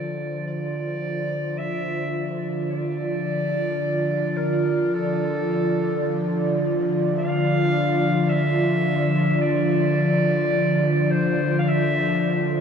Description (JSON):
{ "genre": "ambient", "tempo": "54 BPM", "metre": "4/4", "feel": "straight", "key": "D minor", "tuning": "A4 = 440 Hz", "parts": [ { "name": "clear clarinet", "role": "melody", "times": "0.0-12.5 s", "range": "A4 to F5", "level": "-27 LUFS", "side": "equal", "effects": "ping-pong delay" }, { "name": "airy breathy pad", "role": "sustained chords", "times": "0.0-12.6 s", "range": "D3 to D5", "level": "-22 LUFS", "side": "equal", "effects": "chorus" }, { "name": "analog drone", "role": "drone", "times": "0.0-12.6 s", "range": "D3 to D4", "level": "-31 LUFS", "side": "equal", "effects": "chorus" } ], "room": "wet huge ambient reverb, RT60 8.2 s", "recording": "none", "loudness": "-20 LUFS", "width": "side -7 dB against mid", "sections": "0.0-12.6 A section", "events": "fade-in on analog synth pad 0.0-12.6; fade-in on synth drone 0.0-12.6; fade-in on clarinet 0.0-12.6", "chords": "0.0 Dm" }